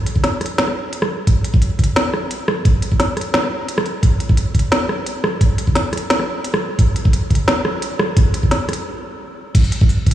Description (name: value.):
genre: drum and bass.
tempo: 174 BPM.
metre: 4/4.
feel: swing 54% on 16ths, half-time.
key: none.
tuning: none.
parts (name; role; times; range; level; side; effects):
organic electronic drum kit; drums; 0.1-10.1 s; crash cymbal, hi-hat, rim click, snare drum; -19 LUFS; equal; none.
electronic kick drum; drums; 0.2-10.1 s; none; -14 LUFS; equal; none.
room: moderate huge ambient reverb, RT60 5.2 s.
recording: played on a big sound system in a bare room, large studio reverb, studio ambience.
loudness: -15 LUFS.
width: side -12 dB against mid.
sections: 0.0-9.5 A section.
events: build-up 0.0-9.5; stop 8.9-9.5.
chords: none.